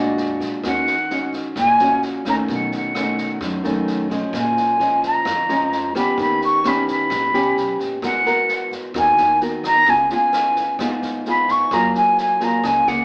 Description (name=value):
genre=bossa nova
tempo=130 BPM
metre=4/4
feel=straight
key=Eb minor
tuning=A4 = 440 Hz
part: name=bell-like tine electric piano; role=accompaniment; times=0.0-0.7 s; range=Ab3 to Gb4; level=-24 LUFS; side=equal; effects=none
part: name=nylon-string guitar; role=accompaniment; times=0.0-13.0 s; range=F2 to Bb4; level=-22 LUFS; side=equal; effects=none
part: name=upright bass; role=bass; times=0.0-13.0 s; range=Ab1 to F#2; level=-34 LUFS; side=equal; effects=none
part: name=swinging big-band drum kit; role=drums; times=0.2-12.9 s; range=kick drum, rim click, snare drum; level=-31 LUFS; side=equal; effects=none
part: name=concert flute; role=melody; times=0.7-13.0 s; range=F#5 to Db6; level=-16 LUFS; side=equal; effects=none
room=moderate studio reverb, RT60 0.6 s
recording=band playing live in one room, AM radio sound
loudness=-16 LUFS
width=side -33 dB against mid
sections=0.6-13.0 A section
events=none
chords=0.0 Bb7b13; 0.6 Ebm7; 2.5 B9; 4.3 Bbm7; 6.2 Eb7b13; 8.0 Abm9; 9.9 Db7; 11.7 Gbmaj9